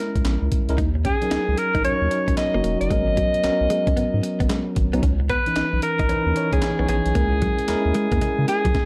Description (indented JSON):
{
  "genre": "R&B, new jack swing",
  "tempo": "113 BPM",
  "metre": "4/4",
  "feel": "swing 64% on 16ths",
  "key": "G# minor",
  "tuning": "A4 = 440 Hz",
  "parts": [
    { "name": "bright alto saxophone", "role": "melody", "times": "0.0-8.9 s", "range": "G#4 to D#5", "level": "-26 LUFS", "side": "equal", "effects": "digital delay" },
    { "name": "tine electric piano", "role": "accompaniment", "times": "0.0-8.8 s", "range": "E3 to C#5", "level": "-28 LUFS", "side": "equal", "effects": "none" },
    { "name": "round analog bass", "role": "bass", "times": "0.2-8.7 s", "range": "E1 to C#3", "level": "-26 LUFS", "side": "equal", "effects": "none" },
    { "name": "breakbeat sampler-style drum kit", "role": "drums", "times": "0.2-8.9 s", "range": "handclaps, hi-hat, kick drum, snare drum", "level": "-27 LUFS", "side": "equal", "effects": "none" },
    { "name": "direct-recorded clean electric guitar", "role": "riff", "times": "0.8-8.7 s", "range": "F#3 to D#4", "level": "-32 LUFS", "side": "equal", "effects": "subtle chorus" }
  ],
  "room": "light reverb",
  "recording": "dark, warm production",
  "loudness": "-21 LUFS",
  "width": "mono",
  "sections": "0.0-8.9 A section",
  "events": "none",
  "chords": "0.0 A#m7b5/C#; 0.8 D#m7; 2.9 G#m11; 5.0 C#m9; 7.2 A#m7b5/C#",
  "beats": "0.25 | 0.78 1.31 1.84 2.38 | 2.91 3.44 3.97 4.50 | 5.03 5.56 6.09 6.62 | 7.15 7.68 8.22 8.75"
}